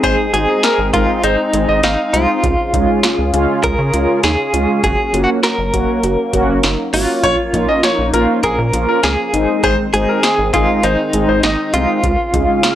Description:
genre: synth-pop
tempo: 100 BPM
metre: 4/4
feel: straight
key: Db major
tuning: A4 = 440 Hz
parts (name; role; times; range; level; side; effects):
- direct-recorded clean electric guitar; melody; 0.0-12.8 s; Eb4 to Bb4; -18 LUFS; equal; tremolo
- clear baby grand piano; second line; 0.0-2.3, 7.2-11.9 s; Ab4 to F5; -18 LUFS; left 1 dB; tape echo
- mellow synth brass; accompaniment; 0.0-12.6 s; Ab3 to Gb4; -19 LUFS; right 1 dB; chorus
- sweeping resonant pad; sustained chords; 0.0-12.8 s; Db3 to F5; -23 LUFS; left 1 dB; wide subtle chorus
- warbly dusty pluck; arpeggios; 0.0-12.8 s; Db4 to Ab4; -25 LUFS; right 2 dB; none
- rubbery square bass; bass; 0.0-12.5 s; Gb1 to Db3; -20 LUFS; equal; none
- electro analog drum machine; drums; 0.0-12.8 s; hi-hat, kick drum, snare drum; -20 LUFS; equal; none
room: little or no reverb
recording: dry, gritty hardware recording, transformer saturation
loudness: -12 LUFS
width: side -12 dB against mid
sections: 0.0-12.8 A section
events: none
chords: 0.0 Ab; 2.4 Db; 4.8 Gb; 7.2 Bbm; 9.3 Ab; 12.0 Db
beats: | 0.04 0.64 1.24 1.84 | 2.44 3.04 3.64 4.24 | 4.84 5.44 6.04 6.64 | 7.24 7.84 8.44 9.04 | 9.64 10.24 10.84 11.44 | 12.04 12.64

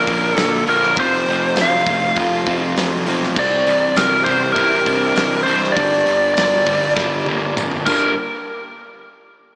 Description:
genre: classic rock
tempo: 100 BPM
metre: 4/4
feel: straight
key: G dorian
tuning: A4 = 440 Hz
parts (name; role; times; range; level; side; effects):
- biting lead guitar; melody; 0.0-8.1 s; Bb4 to F5; -17 LUFS; equal; overdrive
- phased string machine; sustained chords; 0.0-8.3 s; A3 to D5; -32 LUFS; equal; none
- crunchy overdriven guitar; riff; 0.0-8.1 s; G2 to F4; -23 LUFS; right 1 dB; slapback echo
- overdriven semi-hollow guitar; riff; 0.0-8.1 s; F2 to C4; -23 LUFS; equal; slapback echo
- fuzz fingered electric bass; bass; 0.0-8.1 s; F1 to C2; -26 LUFS; equal; overdrive
- gated 80s drum kit; drums; 0.1-8.0 s; crash cymbal, hi-hat, kick drum, snare drum, toms; -24 LUFS; equal; none
- tambourine; percussion; 0.4-8.1 s; none; -36 LUFS; equal; none
room: wet lush hall reverb, RT60 2.6 s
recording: big arena sound, small speaker sound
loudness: -14 LUFS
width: side -32 dB against mid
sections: 0.0-8.2 A section; 8.2-9.6 B section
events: drum fill 7.0-8.2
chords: 0.0 Bb; 1.0 F; 3.4 Cadd9; 5.8 Gm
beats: 0.38 | 0.97 1.57 2.17 2.77 | 3.37 3.97 4.57 5.17 | 5.77 6.37 6.97 7.57 | 8.17

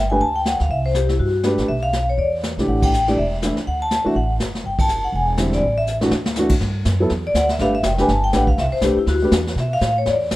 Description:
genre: jazz, small-group swing and bop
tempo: 244 BPM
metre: 4/4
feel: swing 58% on 8ths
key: G major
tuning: A4 = 440 Hz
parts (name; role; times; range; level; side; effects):
- vibraphone with medium hard mallets; melody; 0.0-10.2 s; E4 to A5; -21 LUFS; left 2 dB; none
- upright bass; bass; 0.0-10.4 s; E1 to B2; -22 LUFS; equal; none
- warm concert grand piano; accompaniment; 0.1-9.3 s; D3 to B4; -21 LUFS; equal; none
- vintage brush drum kit; drums; 0.2-10.4 s; brushed snare drum, crash cymbal, hi-hat, kick drum, ride cymbal, snare drum; -24 LUFS; equal; none
room: small room ambience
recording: rough home demo mix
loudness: -17 LUFS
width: side -17 dB against mid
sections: 0.0-6.6 A section; 6.6-10.4 A section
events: band accent 2.8, 4.8; drum fill 5.9-6.4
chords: 0.0 Gsus2; 0.7 Csus2; 1.7 C#7#9/B (rootless); 2.2 E5; 2.7 A5; 3.7 D; 4.6 Gsus2; 5.1 Em7b13; 5.6 A5; 6.1 Dadd9; 6.6 Gmaj7(no3); 7.6 G9; 8.6 Cmaj9; 9.6 Asus2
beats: 0.21 0.45 | 0.70 0.95 1.19 1.44 | 1.69 1.93 2.18 2.42 | 2.67 2.92 3.17 3.41 | 3.66 3.90 4.15 4.40 | 4.64 4.89 5.14 5.38 | 5.63 5.88 6.12 6.37 | 6.62 6.86 7.11 7.35 | 7.60 7.85 8.09 8.34 | 8.58 8.83 9.08 9.32 | 9.57 9.82 10.06 10.31

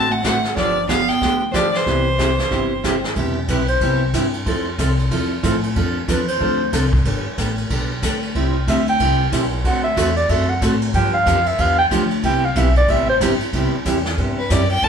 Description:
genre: country, western swing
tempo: 185 BPM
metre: 4/4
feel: swing 62% on 8ths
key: C major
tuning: A4 = 440 Hz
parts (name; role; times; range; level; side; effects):
- clear fiddle; melody; 0.0-3.0, 14.4-14.9 s; B4 to A5; -20 LUFS; equal; none
- mellow clarinet; second line; 0.0-13.2 s; E3 to G5; -20 LUFS; right 1 dB; none
- picked steel-string acoustic guitar; accompaniment; 0.0-14.9 s; C3 to A4; -22 LUFS; right 2 dB; none
- upright bass; bass; 0.0-14.9 s; E1 to A2; -21 LUFS; left 1 dB; none
- vintage brush drum kit; drums; 0.2-14.9 s; brushed snare drum, hi-hat, kick drum, ride cymbal, snare drum; -24 LUFS; equal; none
room: moderate large studio reverb, RT60 0.8 s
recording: band playing live in one room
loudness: -16 LUFS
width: side -7 dB against mid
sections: 0.0-3.2 A section; 3.2-13.5 B section; 13.5-14.9 B section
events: clarinet solo 3.2-13.5; fiddle solo 13.5-14.9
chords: 0.0 D7; 0.6 G7; 1.9 Cmaj7; 4.5 Fmaj7; 5.8 Dm7; 7.1 Gadd9; 8.3 C; 9.6 D7; 10.9 G7; 12.2 Cmaj7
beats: 0.24 | 0.57 0.89 1.22 1.54 | 1.86 2.19 2.51 2.84 | 3.16 3.49 3.81 4.14 | 4.46 4.78 5.11 5.43 | 5.76 6.08 6.41 6.73 | 7.05 7.38 7.70 8.03 | 8.35 8.67 9.00 9.32 | 9.64 9.97 10.29 10.62 | 10.94 11.26 11.59 11.91 | 12.23 12.56 12.88 13.20 | 13.53 13.85 14.18 14.50 | 14.82

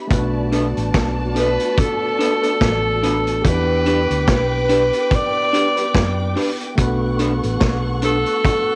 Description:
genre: lovers rock reggae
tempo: 72 BPM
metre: 4/4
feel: swing 57% on 16ths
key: B minor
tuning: A4 = 440 Hz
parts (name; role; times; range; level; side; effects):
- warm studio string section; second line; 0.0-8.8 s; F#4 to D6; -30 LUFS; equal; cassette tape, analog delay
- tine electric piano; accompaniment; 0.0-8.8 s; A3 to B4; -28 LUFS; equal; cassette tape
- hollow-body short-scale fingered electric bass; bass; 0.1-8.2 s; A1 to F#2; -25 LUFS; equal; none
- vintage drum kit; drums; 0.1-8.7 s; hi-hat, kick drum, snare drum; -23 LUFS; equal; cassette tape
- electric guitar through a small old amp; stabs; 0.5-8.2 s; D4 to B4; -24 LUFS; equal; analog chorus, cassette tape, plate reverb
- breathy alto saxophone; melody; 1.4-8.8 s; A4 to D5; -21 LUFS; equal; tape echo
room: moderate booth ambience, RT60 0.2 s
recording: home recording on cassette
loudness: -18 LUFS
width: mono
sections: 0.0-8.8 A section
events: none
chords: 0.1 Bm7; 3.4 Em7; 6.8 Bm7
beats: | 0.10 0.94 1.77 2.61 | 3.44 4.28 5.11 5.94 | 6.78 7.61 8.44

